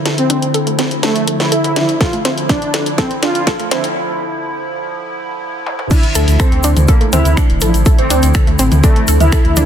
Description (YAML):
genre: melodic techno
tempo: 123 BPM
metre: 4/4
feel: straight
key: D minor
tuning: A4 = 440 Hz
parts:
  - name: evolving wavetable pad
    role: sustained chords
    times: 0.0-9.7 s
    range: D3 to E4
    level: -22 LUFS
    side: left 1 dB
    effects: chorus, built-in reverb, sidechain pumping
  - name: dark detuned saw bass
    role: bass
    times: 0.0-9.7 s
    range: D1 to D2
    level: -15 LUFS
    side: equal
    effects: sidechain pumping, high-pass filter
  - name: wide unison pluck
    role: arpeggios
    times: 0.1-9.7 s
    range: A3 to A4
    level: -21 LUFS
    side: right 1 dB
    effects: sidechain pumping, dub echo
  - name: house drum kit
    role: drums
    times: 0.1-9.7 s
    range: crash cymbal, finger snaps, hi-hat, snare drum, toms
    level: -20 LUFS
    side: left 1 dB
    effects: sidechain pumping on hats, high-pass filter on hats, soft clipping on snare, high-pass filter on snare, sidechain pumping on toms, high-pass filter on toms, sidechain pumping on cymbals, high-pass filter on cymbals, high-pass filter on room
  - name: soft supersaw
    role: melody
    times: 0.2-9.7 s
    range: A3 to F4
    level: -20 LUFS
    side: equal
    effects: sidechain pumping, digital delay
  - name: brassy analog pad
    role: stabs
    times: 1.8-3.8, 7.6-9.7 s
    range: D3 to E4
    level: -23 LUFS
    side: right 1 dB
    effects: chorus, sidechain pumping, dub echo
  - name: electronic kick drum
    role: drums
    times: 2.0-9.4 s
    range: none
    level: -12 LUFS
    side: equal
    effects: none
  - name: dark detuned synth bell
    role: second line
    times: 5.9-9.7 s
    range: A4 to E5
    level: -24 LUFS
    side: right 4 dB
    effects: chorus, phaser, sidechain pumping, dub echo
  - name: swarming drone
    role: drone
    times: 7.1-9.7 s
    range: D3 to A3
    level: -26 LUFS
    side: left 2 dB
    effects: none
  - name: tube shaker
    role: percussion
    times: 5.9-9.7 s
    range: none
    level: -25 LUFS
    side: left 1 dB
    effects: none
room: light reverb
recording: dense, heavily limited modern master, high-pass filter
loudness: -11 LUFS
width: side -9 dB against mid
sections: 0.0-5.9 A section; 5.9-9.7 B section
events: build-up 0.0-5.9; drum fill 0.0-4.0, 5.7; filter sweep on synth arpeggio sound 0.0-5.9; filter sweep on supersaw synth 0.0-5.9; filter sweep on ambient pad 0.0-5.9; filter sweep 0.0-5.9; break 4.0-5.9; drop 5.9-9.7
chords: 0.0 Dmadd9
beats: | 0.06 0.54 1.03 1.52 | 2.01 2.50 2.98 3.47 | 3.96 4.45 4.93 5.42 | 5.91 6.40 6.88 7.37 | 7.86 8.35 8.84 9.32